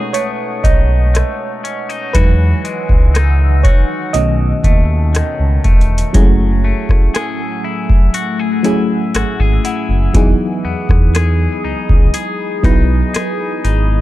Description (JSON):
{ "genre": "contemporary R&B", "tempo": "60 BPM", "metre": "4/4", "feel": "straight", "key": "E major", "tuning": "A4 = 440 Hz", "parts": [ { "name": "FM electric piano with auto-pan", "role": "accompaniment", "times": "0.0-14.0 s", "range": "D#3 to D#5", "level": "-20 LUFS", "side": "right 2 dB", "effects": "none" }, { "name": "deep dark ambient pad", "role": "sustained chords", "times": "0.0-14.0 s", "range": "A3 to E6", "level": "-24 LUFS", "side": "left 3 dB", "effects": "chorus, built-in reverb" }, { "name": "twangy electric guitar", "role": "arpeggios", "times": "0.0-14.0 s", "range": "B2 to G#4", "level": "-23 LUFS", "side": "left 7 dB", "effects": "digital delay" }, { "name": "booming analog drum machine", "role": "drums", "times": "0.1-13.9 s", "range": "hi-hat, kick drum, rim click", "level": "-12 LUFS", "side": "equal", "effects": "none" }, { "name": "smooth gliding synth bass", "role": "bass", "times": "0.6-14.0 s", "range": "E1 to E2", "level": "-14 LUFS", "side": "equal", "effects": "none" }, { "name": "synth chime", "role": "texture", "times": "7.1-10.6 s", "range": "F#5 to G#5", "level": "-32 LUFS", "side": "right 2 dB", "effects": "ensemble chorus, digital delay" } ], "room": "little or no reverb", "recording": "dark, warm production", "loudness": "-12 LUFS", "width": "side -16 dB against mid", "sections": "0.0-6.1 A section; 6.1-14.0 B section", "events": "FM electric piano solo 0.0-6.1", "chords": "0.0 B13; 2.1 Emaj9; 4.1 B9; 6.1 F#m9; 10.1 Emaj7", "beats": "0.14 1.14 | 2.14 3.14 4.14 5.14 | 6.14 7.14 8.14 9.14 | 10.14 11.14 12.14 13.14" }